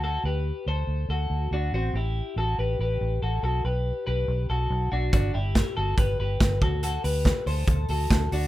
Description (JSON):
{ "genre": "jangly indie pop", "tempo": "141 BPM", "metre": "4/4", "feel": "straight", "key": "unclear", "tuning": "A4 = 440 Hz", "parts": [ { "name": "twelve-string electric guitar", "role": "arpeggios", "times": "0.0-8.5 s", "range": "C4 to C5", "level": "-29 LUFS", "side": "left 2 dB", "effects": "none" }, { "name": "vintage muted fingered electric bass", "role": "bass", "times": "0.0-8.5 s", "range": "G1 to D2", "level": "-26 LUFS", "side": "equal", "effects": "none" }, { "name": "modern studio drum kit", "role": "drums", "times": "5.1-8.4 s", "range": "hi-hat, kick drum, snare drum", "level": "-24 LUFS", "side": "right 1 dB", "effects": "none" } ], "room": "little or no reverb", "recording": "rough home demo mix", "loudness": "-23 LUFS", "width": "side -15 dB against mid", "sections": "0.0-8.5 A section", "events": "none", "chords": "0.0 D7; 1.7 Am7; 3.4 B5; 5.1 Gmaj7; 6.6 D7" }